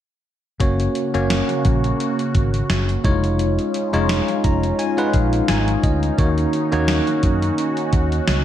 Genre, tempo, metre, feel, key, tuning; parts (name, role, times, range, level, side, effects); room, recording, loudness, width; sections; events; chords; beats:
1980s-style pop; 86 BPM; 4/4; swing 55% on 16ths; F# major; A4 = 438 Hz
barky tine electric piano; accompaniment; 0.6-8.4 s; D#3 to A#5; -21 LUFS; left 1 dB; medium stereo tremolo
phased analog pad; sustained chords; 0.9-8.4 s; C#3 to F#4; -24 LUFS; right 2 dB; phaser, chorus
fingered electric bass; bass; 0.6-8.4 s; E#1 to F#2; -21 LUFS; equal
gated 80s digital drum machine; drums; 0.6-8.4 s; hi-hat, kick drum, snare drum; -22 LUFS; equal; gated reverb, gated reverb snare
moderate plate reverb, RT60 1.5 s; dreamy mix soaked in reverb; -17 LUFS; side -11 dB against mid
0.6-8.4 A section
tine electric piano fill 4.1-6.2
0.6 F#; 3.0 C#add9/E#; 6.2 D#m7
| 0.60 1.30 2.00 2.70 | 3.39 4.09 4.79 5.49 | 6.18 6.88 7.58 8.28